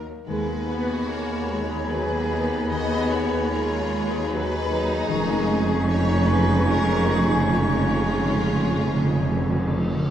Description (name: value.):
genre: cinematic.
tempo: 74 BPM.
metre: 3/4.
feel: uneven beats, rubato.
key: unclear.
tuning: A4 = 444 Hz.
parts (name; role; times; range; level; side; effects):
rich studio violin section; melody; 0.0-9.9 s; G#4 to D#5; -32 LUFS; left 3 dB; none.
clear studio violin section; second line; 0.0-10.0 s; C#4 to G#4; -35 LUFS; left 1 dB; none.
clear symphonic viola section; accompaniment; 0.0-9.9 s; F#3 to B3; -29 LUFS; right 1 dB; none.
concert harp; arpeggios; 0.0-10.1 s; D#3 to E#6; -36 LUFS; left 9 dB; none.
clear symphonic double bass section; bass; 0.0-9.9 s; E#1 to D#2; -27 LUFS; right 2 dB; none.
rich symphonic cello section; bass; 0.0-9.9 s; D#2 to E#2; -27 LUFS; right 1 dB; none.
clear clarinet; second line; 0.3-9.8 s; D#4; -34 LUFS; equal; none.
flute section; second line; 0.3-9.8 s; B5 to C#6; -33 LUFS; left 2 dB; none.
warm oboe; second line; 0.3-9.8 s; G#5; -32 LUFS; right 1 dB; none.
dark French horn section; sustained chords; 0.3-9.8 s; B2 to G#4; -31 LUFS; left 4 dB; none.
timpani; percussion; 5.1-10.1 s; C#3; -28 LUFS; right 1 dB; none.
room: wet scoring stage reverb, RT60 1.6 s.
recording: dark, warm production.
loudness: -20 LUFS.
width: side -10 dB against mid.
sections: 0.0-10.1 A section.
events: timpani fill 5.1-10.1.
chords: 0.3 B6/D#; 5.1 C#add9/E#.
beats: | 0.28 1.09 1.90 | 2.70 3.50 4.30 | 5.09 5.88 6.70 | 7.55 8.43 9.30.